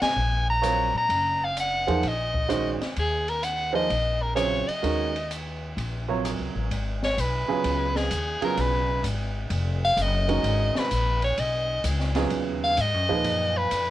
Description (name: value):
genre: modal jazz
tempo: 128 BPM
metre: 4/4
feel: swing 67% on 8ths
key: Eb dorian, G# dorian from 6.7 s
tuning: A4 = 439 Hz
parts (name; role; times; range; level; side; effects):
- edgy soprano saxophone; melody; 0.0-13.9 s; G#4 to Bb5; -25 LUFS; left 1 dB; cassette tape
- upright bass; bass; 0.0-13.9 s; E#1 to Bb2; -28 LUFS; left 1 dB; none
- open jazz drum kit; drums; 0.0-13.9 s; hi-hat, kick drum, ride cymbal, rim click, snare drum; -33 LUFS; equal; none
- warm baby grand piano; accompaniment; 0.6-13.7 s; A#2 to Db5; -28 LUFS; right 6 dB; cassette tape
room: moderate booth ambience, RT60 0.2 s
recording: home recording on cassette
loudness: -23 LUFS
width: side -14 dB against mid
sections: 0.0-6.7 A section; 6.7-13.9 B section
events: band accent 0.0; soprano saxophone solo 6.7-13.9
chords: 0.0 Ebm9; 6.7 G#m11